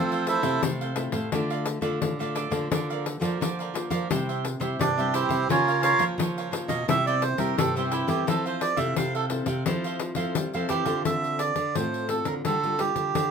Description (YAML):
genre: samba and choro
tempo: 86 BPM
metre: 4/4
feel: straight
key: F major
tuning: A4 = 440 Hz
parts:
  - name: melodica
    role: melody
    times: 0.0-0.6, 4.8-13.3 s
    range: C4 to F5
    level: -25 LUFS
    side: right 4 dB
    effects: none
  - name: cavaquinho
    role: accompaniment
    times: 0.0-11.0 s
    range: D4 to F5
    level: -34 LUFS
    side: right 6 dB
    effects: none
  - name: nylon-string guitar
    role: accompaniment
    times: 0.0-13.3 s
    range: G2 to A4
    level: -32 LUFS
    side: left 4 dB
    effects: none
  - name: nylon-string guitar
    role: bass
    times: 0.0-13.3 s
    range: A2 to G3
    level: -30 LUFS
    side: right 1 dB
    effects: none
  - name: pandeiro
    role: percussion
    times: 0.1-13.3 s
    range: none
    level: -30 LUFS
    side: left 7 dB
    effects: none
room: moderate studio reverb, RT60 0.5 s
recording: minimal, uncompressed stereo recording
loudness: -24 LUFS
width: side -6 dB against mid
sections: 0.0-11.1 A section; 11.1-13.3 B section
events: melodica solo 0.0-11.1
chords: 0.0 Fmaj7; 1.3 Dm; 2.7 Bb/D; 4.1 C; 5.5 Bbm/Db; 6.9 C; 8.3 Fmaj7; 11.1 Dm7; 12.5 Gm7/D